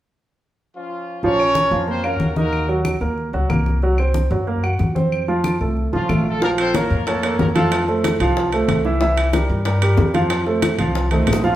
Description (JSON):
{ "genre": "latin, salsa", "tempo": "185 BPM", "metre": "4/4", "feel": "straight", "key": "Bb harmonic minor", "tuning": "A4 = 442 Hz", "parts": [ { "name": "warm horn section", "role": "melody", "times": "0.8-2.8, 5.9-7.9, 11.1-11.6 s", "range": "Eb3 to Db5", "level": "-22 LUFS", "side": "equal", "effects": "none" }, { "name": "warm grand piano", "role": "accompaniment", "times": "1.2-11.6 s", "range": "E3 to Gb5", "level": "-20 LUFS", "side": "right 2 dB", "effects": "none" }, { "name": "upright bass", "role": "bass", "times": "1.2-11.6 s", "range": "Bb1 to G2", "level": "-22 LUFS", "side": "equal", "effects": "none" }, { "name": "congas", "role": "percussion", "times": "1.2-11.5 s", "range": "none", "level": "-25 LUFS", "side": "left 2 dB", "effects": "none" }, { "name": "claves", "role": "percussion", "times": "1.4-6.3 s", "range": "none", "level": "-32 LUFS", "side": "left 1 dB", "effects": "none" }, { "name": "bongos", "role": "percussion", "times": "6.4-11.6 s", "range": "none", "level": "-26 LUFS", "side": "left 5 dB", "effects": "none" }, { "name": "timbales", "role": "percussion", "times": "6.6-11.4 s", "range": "none", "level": "-27 LUFS", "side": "right 3 dB", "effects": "none" } ], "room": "wet large studio reverb, RT60 1.2 s", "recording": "band playing live in one room", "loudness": "-16 LUFS", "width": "side -13 dB against mid", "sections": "0.0-1.2 A section; 1.2-6.4 B section; 6.4-11.6 C section", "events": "drum fill 10.8-11.6", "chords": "0.0 N.C.; 1.2 Bbm; 2.5 Ebm; 3.8 Gbmaj7#11; 5.1 F; 6.4 Bbm; 7.7 F; 9.0 C7; 10.3 F" }